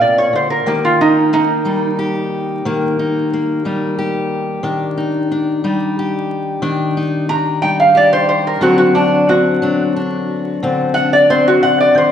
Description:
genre	acoustic country blues, solo or duo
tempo	60 BPM (dotted quarters)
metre	12/8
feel	straight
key	unclear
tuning	A4 = 439 Hz
part	lap resonator guitar	melody	0.0-12.1 s	D4 to Bb5	-12 LUFS	right 1 dB	none
part	fingerpicked steel-string acoustic guitar	accompaniment	0.0-12.1 s	C3 to Bb4	-17 LUFS	left 2 dB	none
room	wet scoring stage reverb, RT60 1.7 s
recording	recorded in a church or concert hall, vinyl crackle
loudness	-13 LUFS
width	side -9 dB against mid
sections	0.0-12.1 A section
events	resonator guitar played with a steel bar solo 0.0-12.1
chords	0.0 Gm7; 0.7 Ebmaj7; 8.6 D7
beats	| 0.66 1.65 2.65 3.64 | 4.63 5.63 6.62 7.62 | 8.62 9.62 10.62 11.62

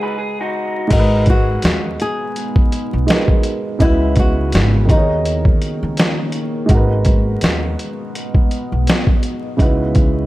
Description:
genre	lo-fi hip hop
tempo	83 BPM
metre	4/4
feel	swing 58% on 16ths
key	G# minor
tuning	A4 = 441 Hz
part	electric guitar through a small old amp	second line	0.0-0.9 s	D#4 to B4	-23 LUFS	left 1 dB	analog delay
part	dark upright piano	accompaniment	0.0-10.3 s	C#3 to D#5	-22 LUFS	right 2 dB	cassette tape
part	flamenco guitar	melody	0.9-5.4 s	D#4 to G#4	-21 LUFS	left 1 dB	analog delay
part	deep dark ambient pad	sustained chords	2.0-10.3 s	D#3 to D#5	-26 LUFS	equal	chorus, built-in reverb
part	upright bass	bass	0.9-10.3 s	G#1 to D#2	-18 LUFS	equal	none
part	boom bap sampler-style drum kit	drums	0.9-10.1 s	crash cymbal, hi-hat, kick drum, snare drum	-15 LUFS	equal	vintage 12-bit sampler grit
room	digital ambience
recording	vinyl crackle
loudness	-14 LUFS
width	side -17 dB against mid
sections	0.9-10.3 A section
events	break 0.0-0.9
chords	0.0 G#m7; 3.8 C#m11; 4.9 D#7sus4; 6.7 G#m7; 9.6 C#m11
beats	0.19 | 0.92 1.64 2.36 3.08 | 3.81 4.53 5.25 5.97 | 6.70 7.42 8.14 8.87 | 9.59

